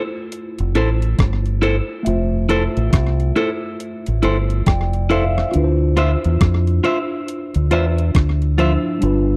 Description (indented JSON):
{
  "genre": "lovers rock reggae",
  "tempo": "69 BPM",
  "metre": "4/4",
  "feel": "swing 61% on 16ths",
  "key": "unclear",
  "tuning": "A4 = 440 Hz",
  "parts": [
    { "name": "tine electric piano", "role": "accompaniment", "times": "0.0-9.4 s", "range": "F3 to G5", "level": "-26 LUFS", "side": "equal", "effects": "overdrive, phaser, slapback echo" },
    { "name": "detuned 8-bit digital drum machine", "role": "drums", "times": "0.3-9.3 s", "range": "hi-hat, kick drum, rim click", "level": "-20 LUFS", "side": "equal", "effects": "overdrive, slapback echo" },
    { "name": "deep dub fingered electric bass", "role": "bass", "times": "0.6-9.4 s", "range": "F1 to F2", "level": "-20 LUFS", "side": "equal", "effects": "none" },
    { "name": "electric guitar at the edge of break-up", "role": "stabs", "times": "0.8-8.7 s", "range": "E4 to E5", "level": "-24 LUFS", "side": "equal", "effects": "spring reverb" }
  ],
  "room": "little or no reverb",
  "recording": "dry, close 1970s-style studio recording",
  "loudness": "-18 LUFS",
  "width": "mono",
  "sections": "0.0-9.4 A section",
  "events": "tine electric piano fill 4.2-5.5",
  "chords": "0.0 Fmaj7; 5.5 Dm9"
}